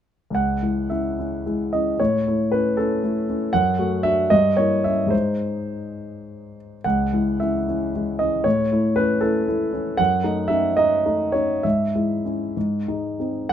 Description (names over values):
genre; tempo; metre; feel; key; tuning
classical, romantic character piece for solo piano; 61-82 BPM (dotted quarters); 6/8; rubato; C# minor; A4 = 440 Hz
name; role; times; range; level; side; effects
warm concert grand piano; solo; 0.3-13.5 s; C#2 to F#5; -19 LUFS; equal; none
room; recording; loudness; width
light reverb; dark, warm production; -19 LUFS; side -9 dB against mid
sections
0.3-13.5 A section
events
none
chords
0.3 C#m; 2.0 A; 3.5 D/F#; 4.3 Gdim7; 5.1 G#; 6.8 C#m; 8.4 A; 10.0 D#m7b5/F#; 11.6 C#m/G#; 12.6 G#